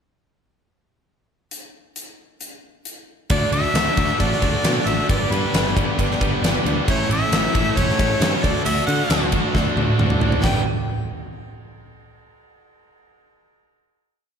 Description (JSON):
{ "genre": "classic rock", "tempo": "135 BPM", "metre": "4/4", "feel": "straight", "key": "G lydian", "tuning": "A4 = 436 Hz", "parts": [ { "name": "huge arena drum kit", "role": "drums", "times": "1.5-10.5 s", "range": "hi-hat, kick drum, ride cymbal, snare drum, splash cymbal, toms", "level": "-22 LUFS", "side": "equal", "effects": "none" }, { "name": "clear harmonica", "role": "melody", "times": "3.3-10.6 s", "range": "B4 to G5", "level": "-25 LUFS", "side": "left 1 dB", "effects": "slapback echo, digital delay" }, { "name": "fingerpicked twelve-string acoustic guitar", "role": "accompaniment", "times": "3.3-10.6 s", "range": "A2 to B4", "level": "-30 LUFS", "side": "right 4 dB", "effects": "none" }, { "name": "tonewheel organ", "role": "sustained chords", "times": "3.3-10.7 s", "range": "A3 to D5", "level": "-34 LUFS", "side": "equal", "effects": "none" }, { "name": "distorted electric guitar", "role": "riff", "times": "3.3-10.6 s", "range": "A2 to B4", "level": "-26 LUFS", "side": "left 10 dB", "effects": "distortion" }, { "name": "tight distorted guitar", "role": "riff", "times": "3.3-10.6 s", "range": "G2 to D4", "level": "-27 LUFS", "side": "right 10 dB", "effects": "distortion" }, { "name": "modern bright picked electric bass", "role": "bass", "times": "3.3-10.6 s", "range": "E1 to D3", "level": "-25 LUFS", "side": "equal", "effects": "none" } ], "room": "moderate concert hall reverb, RT60 1.9 s, studio ambience", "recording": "big arena sound", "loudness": "-17 LUFS", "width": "side -7 dB against mid", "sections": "1.5-3.3 pickup bar; 3.3-10.4 pre-chorus; 10.4-12.2 final chord", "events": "drum fill 9.5-10.4", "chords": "1.5 N.C.; 3.3 D; 5.1 G; 6.9 A; 8.4 D; 10.4 G" }